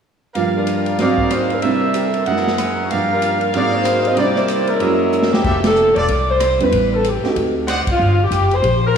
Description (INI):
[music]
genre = jazz, big band swing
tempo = 188 BPM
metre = 4/4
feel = swing 61% on 8ths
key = unclear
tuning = A4 = 441 Hz
[part]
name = dark upright piano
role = accompaniment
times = 0.3-9.0 s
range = Gb2 to F5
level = -20 LUFS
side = right 4 dB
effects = lush chorus
[part]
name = bright trumpet section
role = stabs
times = 0.3-9.0 s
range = E4 to Db6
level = -21 LUFS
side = right 2 dB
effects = analog delay
[part]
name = swinging big-band drum kit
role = drums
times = 0.3-8.7 s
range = crash cymbal, hi-hat, kick drum, ride cymbal, rim click, snare drum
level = -25 LUFS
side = equal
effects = none
[part]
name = mellow saxophone section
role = melody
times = 0.6-9.0 s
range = G3 to Eb5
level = -18 LUFS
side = left 2 dB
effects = analog delay
[part]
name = upright bass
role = bass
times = 5.4-9.0 s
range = E1 to E2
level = -20 LUFS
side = equal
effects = none
[sound]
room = wet lush hall reverb, RT60 1.7 s, small room reverb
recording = dreamy mix soaked in reverb, studio reverb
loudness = -14 LUFS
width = side -7 dB against mid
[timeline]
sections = 0.3-5.4 A section; 5.4-9.0 B section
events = drum fill 5.1-5.4; band accent 5.6, 7.8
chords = 0.3 Gm7; 1.0 Ab13; 1.6 C9; 2.3 Gb9; 2.9 Gm7; 3.5 Ab13; 4.2 C9; 4.8 Gb9; 5.4 Fmaj9; 6.7 Am9; 7.4 D7b9; 8.0 Gmadd11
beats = | 0.34 0.66 0.98 1.30 | 1.62 1.94 2.26 2.58 | 2.90 3.21 3.53 3.85 | 4.17 4.49 4.81 5.12 | 5.44 5.76 6.08 6.40 | 6.72 7.04 7.36 7.67 | 7.99 8.31 8.63 8.95